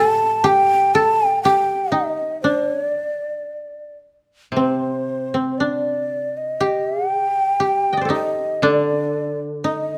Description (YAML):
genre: japanese traditional, Japanese chamber music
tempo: 56-62 BPM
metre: 2/4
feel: rubato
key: D in sen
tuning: A4 = 440 Hz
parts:
  - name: breathy mellow shakuhachi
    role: melody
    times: 0.0-10.0 s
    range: C5 to A5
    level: -22 LUFS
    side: equal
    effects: none
  - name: koto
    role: second line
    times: 0.0-10.0 s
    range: C4 to G5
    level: -23 LUFS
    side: equal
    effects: none
  - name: koto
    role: accompaniment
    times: 0.0-1.4, 4.5-10.0 s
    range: A2 to D3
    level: -28 LUFS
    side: equal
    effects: none
room: moderate recital hall reverb, RT60 1.5 s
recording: close, detailed microphones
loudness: -20 LUFS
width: mono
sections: 0.0-4.5 A section; 4.5-10.0 B section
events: none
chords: none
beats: | 0.45 1.44 | 2.44 3.47 | 4.55 5.59 | 6.61 7.62 | 8.63 9.63